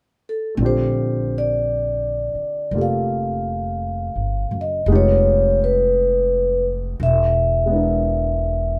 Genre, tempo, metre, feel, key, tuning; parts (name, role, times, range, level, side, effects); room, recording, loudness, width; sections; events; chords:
jazz ballad; 56 BPM; 4/4; swing 66% on 8ths; Bb major; A4 = 440 Hz
vibraphone with soft mallets; melody; 0.3-8.8 s; A4 to F5; -22 LUFS; equal
warm concert grand piano; accompaniment; 0.6-8.8 s; D3 to A#4; -27 LUFS; equal
upright bass; bass; 0.6-8.8 s; E1 to Bb1; -24 LUFS; equal
wet large studio reverb, RT60 0.8 s; heard from further back in the room; -20 LUFS; mono
0.6-8.8 A section
0.0 N.C.; 0.6 Bbmaj13; 4.9 Fm7b5; 7.0 E7#11